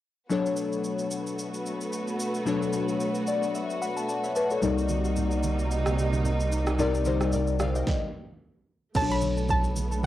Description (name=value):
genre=amapiano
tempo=111 BPM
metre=4/4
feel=swing 55% on 16ths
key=unclear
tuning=A4 = 437 Hz
part: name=glassy digital keys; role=accompaniment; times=0.3-10.1 s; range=B2 to B5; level=-28 LUFS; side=left 4 dB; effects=chorus, cassette tape
part: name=warm studio string section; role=sustained chords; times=0.3-10.1 s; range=C3 to F#4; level=-32 LUFS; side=right 2 dB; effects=sidechain pumping, cassette tape
part: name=smooth R&B drum kit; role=drums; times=0.3-10.1 s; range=crash cymbal, kick drum, rim click, shaker, snare drum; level=-34 LUFS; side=right 2 dB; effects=cassette tape
part: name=warm sub bass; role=bass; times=4.6-10.1 s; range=B1 to C2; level=-28 LUFS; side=right 2 dB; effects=none
part: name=congas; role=percussion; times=4.6-9.9 s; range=none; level=-38 LUFS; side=right 8 dB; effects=none
part: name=hollow square pluck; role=melody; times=9.0-10.1 s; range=A5 to B5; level=-29 LUFS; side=right 2 dB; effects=chorus, cassette tape, analog delay
room=moderate small room reverb, RT60 0.5 s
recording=home recording on cassette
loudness=-25 LUFS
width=side -13 dB against mid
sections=0.3-9.0 A section; 9.0-10.1 B section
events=synth keys fill 3.0-4.6; stop 7.9-9.0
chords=0.3 Bm9; 4.6 Cm9; 9.0 Bm9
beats=| 0.30 0.84 1.39 1.93 | 2.47 3.01 3.55 4.09 | 4.63 5.17 5.71 6.25 | 6.79 7.33 7.87 8.41 | 8.95 9.49 10.03